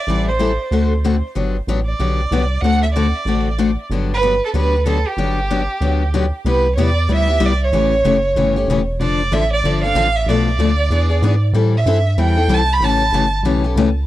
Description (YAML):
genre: acoustic string swing (jazz manouche)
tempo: 188 BPM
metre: 4/4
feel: swing 61% on 8ths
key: G major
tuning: A4 = 440 Hz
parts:
  - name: warm violin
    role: melody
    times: 0.0-13.3 s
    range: G4 to B5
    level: -20 LUFS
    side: right 3 dB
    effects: tape echo
  - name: picked steel-string acoustic guitar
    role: accompaniment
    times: 0.1-13.9 s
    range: B2 to A4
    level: -19 LUFS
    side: left 5 dB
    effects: none
  - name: rubbery square bass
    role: bass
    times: 0.1-14.1 s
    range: E1 to A2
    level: -18 LUFS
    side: right 1 dB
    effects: none
room: little or no reverb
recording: dry, close 1970s-style studio recording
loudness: -14 LUFS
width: side -14 dB against mid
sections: 0.0-6.5 A section; 6.5-14.1 B section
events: none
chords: 0.1 Am7; 0.7 D7; 1.4 Gmaj9; 2.6 D7; 3.9 Gmaj7; 6.5 Cmaj9; 7.7 A7; 9.0 Dm7; 10.3 Bm7b5; 10.9 E7; 11.5 Am7; 12.8 A7